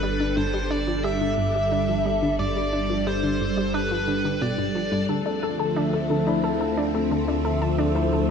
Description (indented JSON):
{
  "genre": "ambient, sequencer-driven space music",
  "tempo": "89 BPM",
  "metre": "4/4",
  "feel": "straight",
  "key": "unclear",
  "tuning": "A4 = 440 Hz",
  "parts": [
    { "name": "biting lead guitar", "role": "melody", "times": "0.0-5.0 s", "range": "B4 to E5", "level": "-28 LUFS", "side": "left 1 dB", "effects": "overdrive, ping-pong delay" },
    { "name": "phased string machine", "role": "sustained chords", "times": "0.0-8.3 s", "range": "D3 to D5", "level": "-26 LUFS", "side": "equal", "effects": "ensemble chorus, phaser" },
    { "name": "analog pluck", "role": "riff", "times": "0.0-8.2 s", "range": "G2 to A4", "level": "-28 LUFS", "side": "equal", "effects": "chorus, cassette tape, ping-pong delay" },
    { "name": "fat analog bass", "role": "bass", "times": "0.0-8.3 s", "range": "G1 to D2", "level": "-30 LUFS", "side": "equal", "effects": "tube saturation" },
    { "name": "concert harp", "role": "arpeggios", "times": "5.1-8.3 s", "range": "E4 to A5", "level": "-27 LUFS", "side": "moving between left 5 dB and right 1 dB", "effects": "auto-pan, ping-pong delay" }
  ],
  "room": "wet scoring stage reverb, RT60 1.9 s",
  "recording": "none",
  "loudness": "-21 LUFS",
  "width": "side -6 dB against mid",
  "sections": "0.0-8.3 A section",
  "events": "none",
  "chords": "0.0 Gadd9; 5.1 Dm7"
}